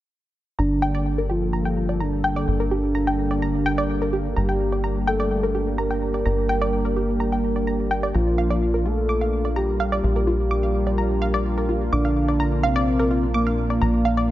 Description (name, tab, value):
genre	techno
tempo	127 BPM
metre	4/4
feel	straight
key	G minor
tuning	A4 = 437 Hz
part	fat analog lead	melody	0.6-14.3 s	Bb3 to Bb4	-24 LUFS	equal	tape echo
part	lush unison pad	sustained chords	0.6-14.3 s	G3 to A4	-28 LUFS	equal	chorus
part	analog pluck	arpeggios	0.6-14.2 s	F4 to D6	-27 LUFS	equal	chorus, tape echo
part	tight sequencer bass	bass	0.6-14.3 s	G1 to Bb1	-24 LUFS	equal	none
room	light reverb, digital ambience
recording	nothing above 7.6 kHz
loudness	-20 LUFS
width	side -14 dB against mid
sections	0.6-14.3 A section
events	filter sweep on analog synth lead 0.6-14.3; filter sweep on analog synth pad 0.6-14.3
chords	0.6 Gm; 8.1 Bb